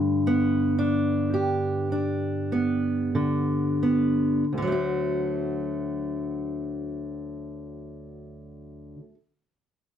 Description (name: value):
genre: folk, solo fingerstyle acoustic guitar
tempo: 42-58 BPM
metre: 4/4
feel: rubato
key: D major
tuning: A4 = 440 Hz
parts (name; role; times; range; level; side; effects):
- fingerpicked steel-string acoustic guitar; solo; 0.0-9.1 s; D2 to G4; -24 LUFS; equal; none
room: light reverb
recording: none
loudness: -23 LUFS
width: side -9 dB against mid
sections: 0.0-4.5 A section; 4.5-10.0 B section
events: slowing down 0.0-4.5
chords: 0.0 G; 4.5 D